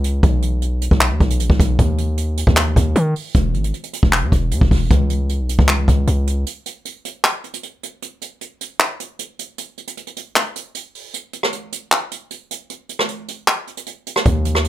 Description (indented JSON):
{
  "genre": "hip hop, trap",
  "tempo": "154 BPM",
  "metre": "4/4",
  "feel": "half-time",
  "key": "unclear",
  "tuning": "A4 = 436 Hz",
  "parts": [
    { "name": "hard-hitting 808-style bass", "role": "bass", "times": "0.0-6.4, 14.3-14.7 s", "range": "E1 to Eb3", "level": "-17 LUFS", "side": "equal", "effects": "none" },
    { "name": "jazz brush drum kit", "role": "drums", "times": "0.0-14.7 s", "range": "handclaps, hi-hat, kick drum, rim click", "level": "-18 LUFS", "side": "equal", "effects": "none" }
  ],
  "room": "little or no reverb",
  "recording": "none",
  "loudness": "-16 LUFS",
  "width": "side -14 dB against mid",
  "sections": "0.0-14.7 A section",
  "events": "break 6.5-8.0, 8.0-14.3",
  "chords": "none"
}